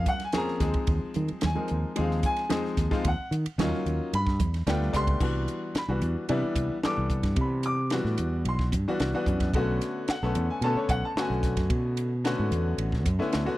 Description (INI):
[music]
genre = electric jazz fusion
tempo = 111 BPM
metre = 4/4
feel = straight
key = unclear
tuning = A4 = 440 Hz
[part]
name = clear grand piano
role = accompaniment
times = 0.0-13.6 s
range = D3 to D6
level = -29 LUFS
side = left 2 dB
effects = none
[part]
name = fretless electric bass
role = bass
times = 0.0-13.5 s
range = A1 to Eb3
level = -28 LUFS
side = equal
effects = none
[part]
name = crisp fusion drum kit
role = drums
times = 0.1-13.5 s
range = crash cymbal, hi-hat, kick drum, ride cymbal, snare drum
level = -30 LUFS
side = equal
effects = none
[part]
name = congas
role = percussion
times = 0.1-4.8 s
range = none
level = -35 LUFS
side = right 7 dB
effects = none
[sound]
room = studio ambience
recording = dry, close 1970s-style studio recording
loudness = -25 LUFS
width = side -16 dB against mid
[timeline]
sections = 0.0-5.2 A section; 5.2-13.6 A section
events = none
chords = 0.0 Gbmaj9#11; 0.6 Fm7/Eb; 3.0 Ebm9; 4.1 G7; 5.2 Cmaj9#11; 9.5 Bm9